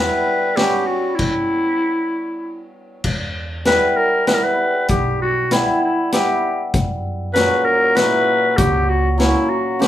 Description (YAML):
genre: klezmer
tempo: 98 BPM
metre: 3/4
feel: straight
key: E dorian sharp4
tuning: A4 = 440 Hz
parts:
  - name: growling clarinet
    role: melody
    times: 0.0-9.9 s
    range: E4 to B4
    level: -18 LUFS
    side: left 1 dB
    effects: none
  - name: hammered dulcimer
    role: accompaniment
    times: 0.0-9.9 s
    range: A#2 to E4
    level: -21 LUFS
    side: equal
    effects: none
  - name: upright bass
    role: bass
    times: 0.0-0.1, 3.0-9.3 s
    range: B1 to F#2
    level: -24 LUFS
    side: right 1 dB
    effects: none
  - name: street-band drum kit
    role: drums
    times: 0.6-9.9 s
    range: crash cymbal, hi-hat, kick drum, ride cymbal, snare drum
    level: -21 LUFS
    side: left 1 dB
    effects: none
room: moderate studio reverb, RT60 0.6 s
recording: minimal, uncompressed stereo recording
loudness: -15 LUFS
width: side -12 dB against mid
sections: 0.0-3.0 A section; 3.0-9.9 B section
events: stop 1.2-3.0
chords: 0.0 Em; 1.2 N.C.; 3.0 Em; 6.7 F#